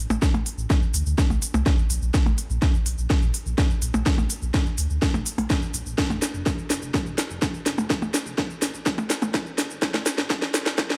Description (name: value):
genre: melodic techno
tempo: 125 BPM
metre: 4/4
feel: straight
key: unclear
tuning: A4 = 440 Hz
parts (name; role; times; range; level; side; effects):
- dark detuned saw bass; bass; 0.0-11.0 s; F1 to D2; -30 LUFS; equal; sidechain pumping
- techno drum kit; drums; 0.1-11.0 s; hi-hat, percussion blips, shaker, snare drum; -27 LUFS; equal; overdrive, small room ambience, sidechain pumping on perc, sidechain pumping on hats
- electronic kick drum; drums; 0.2-10.9 s; none; -26 LUFS; equal; overdrive, small room ambience
room: light reverb, digital ambience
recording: high-pass filter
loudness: -24 LUFS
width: mono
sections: 0.0-11.0 A section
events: build-up 0.0-11.0; drum fill 0.0-11.0; filter sweep 0.0-11.0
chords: none